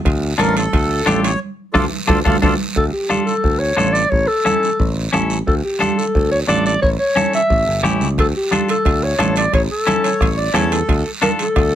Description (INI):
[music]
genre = latin, cumbia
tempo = 177 BPM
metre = 4/4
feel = straight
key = D harmonic minor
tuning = A4 = 440 Hz
[part]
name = picked electric bass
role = bass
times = 0.1-11.8 s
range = G1 to E2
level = -20 LUFS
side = equal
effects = none
[part]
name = bombo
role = percussion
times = 0.1-11.7 s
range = none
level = -20 LUFS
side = equal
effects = none
[part]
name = congas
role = percussion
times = 0.1-11.7 s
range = none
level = -23 LUFS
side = right 3 dB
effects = none
[part]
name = guiro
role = percussion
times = 0.1-11.8 s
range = none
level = -30 LUFS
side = right 4 dB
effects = none
[part]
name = timbales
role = percussion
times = 0.1-2.5, 8.2-11.7 s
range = none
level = -27 LUFS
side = right 6 dB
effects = none
[part]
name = accordion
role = second line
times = 0.4-2.5, 10.0-11.1 s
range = F4 to D5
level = -21 LUFS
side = right 1 dB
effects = none
[part]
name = semi-hollow electric guitar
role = accompaniment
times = 0.4-11.5 s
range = C#4 to A4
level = -20 LUFS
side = left 4 dB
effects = none
[part]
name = breathy clarinet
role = melody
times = 2.8-11.8 s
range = G4 to E5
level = -18 LUFS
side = left 1 dB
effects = none
[sound]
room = light reverb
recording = close, detailed microphones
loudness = -14 LUFS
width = side -11 dB against mid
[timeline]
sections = 0.0-2.8 A section; 2.8-11.8 B section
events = accordion solo 0.0-2.8; band accent 1.4-2.8; drum fill 1.9-2.8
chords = 0.1 Dm; 4.1 A; 5.5 Dm; 6.8 A7; 8.2 Dm; 9.5 A; 10.9 Dm